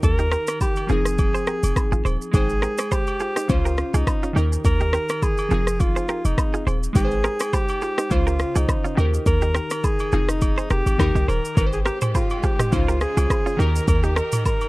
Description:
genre	afrobeats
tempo	104 BPM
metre	4/4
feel	swing 55% on 16ths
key	Ab major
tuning	A4 = 440 Hz
part	breathy alto saxophone	melody	0.0-14.7 s	Eb4 to Bb4	-26 LUFS	equal	tape echo
part	glassy digital keys	accompaniment	0.0-14.7 s	Db3 to G5	-29 LUFS	left 1 dB	chorus
part	short 808-style bass	bass	0.0-14.2 s	Eb1 to Eb2	-21 LUFS	equal	none
part	afro-pop drum kit	drums	0.0-14.7 s	kick drum, rim click, shaker, toms	-22 LUFS	equal	none
part	agogo bells and woodblock	percussion	0.0-14.7 s	none	-34 LUFS	right 2 dB	none
part	direct-recorded clean electric guitar	riff	0.2-14.3 s	Db4 to C5	-30 LUFS	right 4 dB	tape echo
part	muted studio string section	sustained chords	11.6-14.7 s	Db3 to C5	-35 LUFS	equal	none
room	little or no reverb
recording	dark, warm production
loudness	-19 LUFS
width	side -21 dB against mid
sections	0.0-11.6 A section; 11.6-14.7 B section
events	none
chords	0.0 Eb; 0.9 Fm7; 2.3 Abmaj7; 3.5 Dbmaj7; 4.4 Eb; 5.5 Fm7; 7.0 Abmaj7; 8.1 Dbmaj7; 9.0 Eb; 10.1 Fm7; 11.0 Eb; 11.6 Abmaj7; 12.7 Dbmaj7; 13.6 Eb

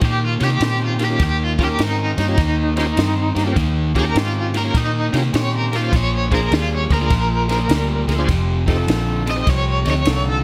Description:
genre	electric blues shuffle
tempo	102 BPM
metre	4/4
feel	swing 66% on 8ths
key	unclear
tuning	A4 = 437 Hz
part	crunchy overdriven guitar	riff	0.0-10.4 s	F2 to C4	-26 LUFS	equal	none
part	vintage muted fingered electric bass	bass	0.0-10.4 s	F1 to C3	-23 LUFS	equal	none
part	compact cocktail drum kit	drums	0.0-10.2 s	kick drum, ride cymbal, snare drum	-25 LUFS	equal	none
part	crunchy overdriven guitar	melody	0.1-10.4 s	Eb4 to Eb5	-25 LUFS	equal	tremolo
part	bright tonewheel organ	accompaniment	0.4-10.0 s	Db4 to Eb5	-28 LUFS	equal	slow rotary speaker, overdrive, chorus vibrato
part	bright horn section	stabs	0.6-10.4 s	Bb3 to Bb4	-30 LUFS	equal	none
room	light reverb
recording	none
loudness	-18 LUFS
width	mono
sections	0.0-10.4 A section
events	overdriven electric guitar solo 0.0-10.4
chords	0.0 Eb7; 5.9 Bb7; 8.3 F7

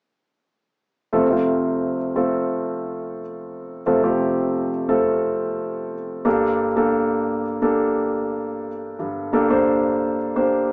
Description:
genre	pop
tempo	88 BPM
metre	4/4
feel	straight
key	F major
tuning	A4 = 440 Hz
part	warm concert grand piano	solo	1.1-10.7 s	F2 to C5	-22 LUFS	equal	none
room	wet studio reverb, RT60 0.5 s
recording	band playing live in one room, small speaker sound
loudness	-22 LUFS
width	mono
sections	1.1-10.7 A section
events	none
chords	1.1 F; 6.3 Gmadd9

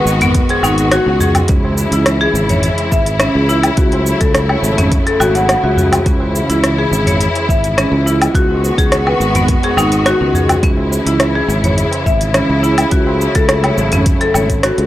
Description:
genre	organic downtempo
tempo	105 BPM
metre	4/4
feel	straight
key	C# minor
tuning	A4 = 440 Hz
part	clear studio string section	sustained chords	0.0-14.9 s	C#3 to F#4	-18 LUFS	left 1 dB	sidechain pumping
part	marimba with hard mallets	arpeggios	0.0-14.8 s	B3 to F#5	-17 LUFS	equal	tape echo
part	sustaining fretless electric bass	bass	0.1-14.9 s	G#1 to C#2	-17 LUFS	equal	none
part	deep house drum kit	drums	0.1-14.9 s	cabasa, hi-hat, rim click, woodblock	-18 LUFS	equal	none
part	tabla	percussion	0.1-14.9 s	none	-22 LUFS	equal	none
part	electronic kick drum	drums	0.3-14.6 s	none	-15 LUFS	equal	none
room	studio ambience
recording	dry, gritty hardware recording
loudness	-11 LUFS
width	side -14 dB against mid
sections	0.0-14.9 A section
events	band accent 14.6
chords	0.0 G#m7; 1.5 C#m; 3.8 F#m7; 6.1 C#m; 8.3 G#m7; 10.6 C#m; 12.9 F#m7

